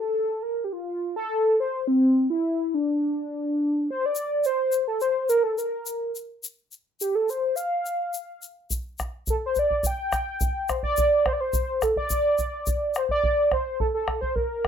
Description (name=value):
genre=andean folk, Andean ensemble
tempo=106 BPM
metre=2/4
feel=straight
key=D minor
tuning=A4 = 440 Hz
part: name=warm velvety synth lead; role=melody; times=0.0-14.7 s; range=C4 to G5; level=-23 LUFS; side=equal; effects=chorus
part: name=egg shaker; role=percussion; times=4.2-13.1 s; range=none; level=-33 LUFS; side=left 6 dB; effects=none
part: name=bombo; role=percussion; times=8.7-14.7 s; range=none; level=-29 LUFS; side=equal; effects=none
room=wet small room reverb, RT60 0.5 s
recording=rough home demo mix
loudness=-22 LUFS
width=side -8 dB against mid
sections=0.0-4.2 A section; 4.2-13.2 B section; 13.2-14.7 B section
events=none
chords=none